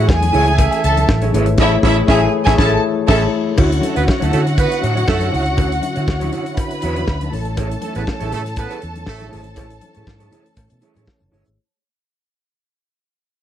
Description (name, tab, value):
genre	disco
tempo	120 BPM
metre	4/4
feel	straight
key	unclear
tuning	A4 = 440 Hz
part	warm symphonic violin section	second line	0.0-11.3 s	E4 to B5	-22 LUFS	left 1 dB	none
part	mellow electric guitar	accompaniment	0.0-11.5 s	E4 to C#5	-25 LUFS	right 4 dB	harmonic tremolo
part	tine electric piano	accompaniment	0.0-11.6 s	D3 to C#5	-22 LUFS	left 8 dB	none
part	tonewheel organ	sustained chords	0.0-11.5 s	D3 to F#4	-27 LUFS	right 3 dB	chorus vibrato, slow rotary speaker
part	fingered electric bass	bass	0.0-11.6 s	F#1 to D3	-19 LUFS	equal	none
part	damped 70s drum kit	drums	0.1-11.6 s	crash cymbal, hi-hat, kick drum, snare drum	-19 LUFS	equal	none
part	congas	percussion	0.1-11.4 s	none	-31 LUFS	left 5 dB	none
part	cowbell	percussion	0.1-11.2 s	none	-32 LUFS	left 4 dB	none
part	warm horn section	stabs	0.3-9.3 s	A3 to E5	-23 LUFS	right 6 dB	none
room	light reverb, small room ambience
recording	none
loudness	-14 LUFS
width	side -10 dB against mid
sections	0.0-3.6 A section; 3.6-11.6 B section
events	band accent 1.6-3.6; fade-out 3.6-11.6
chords	0.0 Amaj7; 3.6 Dmaj9; 7.3 Amaj7